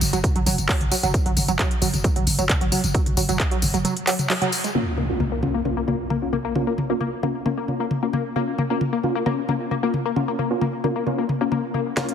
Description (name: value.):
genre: driving peak-time techno.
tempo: 133 BPM.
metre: 4/4.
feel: straight.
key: Bb minor.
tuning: A4 = 441 Hz.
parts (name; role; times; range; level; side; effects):
growling 808-style bass; bass; 0.0-3.8 s; Gb1; -25 LUFS; equal; tube saturation, sidechain pumping, low-pass filter.
techno drum kit; drums; 0.0-12.1 s; handclaps, hi-hat, snare drum, tambourine, toms; -25 LUFS; left 1 dB; none.
tight sequenced synth; riff; 0.1-12.1 s; Gb3 to Bb3; -25 LUFS; left 2 dB; chorus, overdrive, vintage 12-bit sampler grit, sidechain pumping, dub echo.
electronic kick drum; drums; 0.2-3.5, 12.0-12.1 s; none; -22 LUFS; equal; high-pass filter on kick.
rave stab; stabs; 4.8-12.1 s; Bb3 to F4; -25 LUFS; equal; chorus, built-in reverb, sidechain pumping, dub echo.
impact and riser; sound effects; 4.8-6.6, 12.0-12.1 s; none; -29 LUFS; equal; none.
room: moderate lush hall reverb, RT60 2.3 s.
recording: heavily compressed radio sound.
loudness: -20 LUFS.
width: side -8 dB against mid.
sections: 0.0-4.8 A section; 4.8-12.0 B section.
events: band accent 4.3; impact 4.8-6.6; drum fill 12.0.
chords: 0.0 N.C.; 4.8 Bbm.